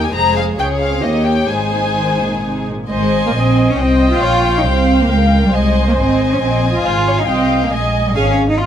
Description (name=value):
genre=quick classical-period movement for string orchestra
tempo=137 BPM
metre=3/4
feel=rubato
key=Ab major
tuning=A4 = 440 Hz
part: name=warm chamber violin section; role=melody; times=0.0-8.4 s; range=Eb5 to Bb5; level=-21 LUFS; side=left 5 dB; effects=none
part: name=warm chamber violin section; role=second line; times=0.0-8.4 s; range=G4 to F5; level=-21 LUFS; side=left 2 dB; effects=none
part: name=warm chamber viola section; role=accompaniment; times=0.0-8.4 s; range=Ab3 to Eb5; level=-21 LUFS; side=right 1 dB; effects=none
part: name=clear chamber double bass section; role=bass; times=0.0-8.5 s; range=F1 to Eb2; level=-18 LUFS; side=right 1 dB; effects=none
part: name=warm studio cello section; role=bass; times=0.0-8.7 s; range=Db2 to F4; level=-17 LUFS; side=right 1 dB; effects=none
room=moderate recital hall reverb, RT60 1.3 s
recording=vinyl crackle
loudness=-12 LUFS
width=side -9 dB against mid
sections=0.0-2.9 A section; 2.9-8.7 B section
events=none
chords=0.2 Fm; 0.6 Db; 1.0 Eb7; 1.5 Ab; 4.2 Eb7/Bb (rootless); 5.5 Ab; 8.2 Db/Ab